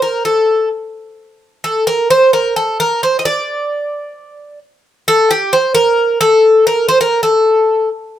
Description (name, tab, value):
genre	greek folk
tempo	131 BPM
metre	4/4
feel	straight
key	unclear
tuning	A4 = 440 Hz
part	Greek bouzouki	solo	0.0-7.9 s	G4 to Eb5	-11 LUFS	equal	none
room	moderate studio reverb, RT60 0.6 s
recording	none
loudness	-11 LUFS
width	side -11 dB against mid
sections	0.0-5.1 A section; 5.1-8.2 B section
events	none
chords	none